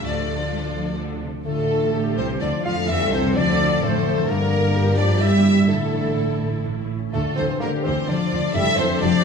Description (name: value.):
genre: classical, dramatic, fast romantic movement for symphony orchestra.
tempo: 127 BPM.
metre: 3/4.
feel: rubato.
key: D minor.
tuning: A4 = 444 Hz.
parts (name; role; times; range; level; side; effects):
rich studio violin section; melody; 0.0-9.2 s; A4 to F5; -30 LUFS; left 5 dB; none.
silver concert flute; second line; 0.0-1.0 s; D5; -34 LUFS; left 1 dB; none.
warm symphonic violin section; second line; 0.0-9.2 s; F4 to F5; -29 LUFS; equal; none.
warm symphonic viola section; accompaniment; 0.0-9.2 s; F3 to D5; -31 LUFS; equal; none.
concert harp; arpeggios; 0.0-9.2 s; F2 to F5; -29 LUFS; left 7 dB; none.
rich chamber cello section; bass; 0.0-9.1 s; F2 to G3; -26 LUFS; right 1 dB; none.
warm symphonic double bass section; bass; 0.0-9.1 s; F1 to F2; -28 LUFS; right 3 dB; none.
mellow French horn section; sustained chords; 1.4-9.2 s; D3 to A3; -23 LUFS; left 1 dB; none.
mellow clarinet; second line; 1.5-9.2 s; A4 to F5; -31 LUFS; left 2 dB; none.
mellow bassoon; accompaniment; 1.5-9.2 s; A3 to F4; -28 LUFS; right 3 dB; none.
room: wet scoring stage reverb, RT60 1.6 s.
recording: studio reverb.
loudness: -18 LUFS.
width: side -6 dB against mid.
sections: 0.0-1.5 A section; 1.5-9.2 B section.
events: none.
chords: 0.0 Dm; 1.5 Dm/A; 4.3 Em7b5/G; 5.7 Asus4; 6.7 A; 7.1 Dm; 8.6 Dm/F.